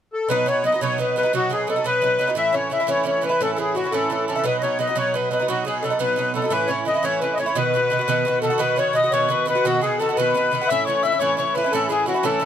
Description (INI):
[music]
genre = celtic folk, Celtic jig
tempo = 116 BPM (dotted quarters)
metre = 6/8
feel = straight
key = B mixolydian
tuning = A4 = 442 Hz
[part]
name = accordion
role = melody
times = 0.1-12.5 s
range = F#4 to E5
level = -21 LUFS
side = left 3 dB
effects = light tremolo tuning
[part]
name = Irish bouzouki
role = accompaniment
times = 0.3-12.5 s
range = A2 to F#4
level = -23 LUFS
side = right 6 dB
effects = none
[part]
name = mellow hollow tin whistle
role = second line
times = 8.4-12.5 s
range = F#5 to E6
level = -25 LUFS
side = left 6 dB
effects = none
[sound]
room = light reverb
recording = close, detailed microphones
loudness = -18 LUFS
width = side -9 dB against mid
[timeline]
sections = 0.3-8.6 A section; 8.6-12.5 A section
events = none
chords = 0.3 B; 2.4 A; 4.4 B; 6.5 A; 7.6 B; 10.7 A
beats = | 0.29 0.81 | 1.33 1.85 | 2.37 2.88 | 3.40 3.92 | 4.44 4.96 | 5.48 6.00 | 6.52 7.04 | 7.56 8.08 | 8.60 9.12 | 9.64 10.16 | 10.68 11.20 | 11.72 12.24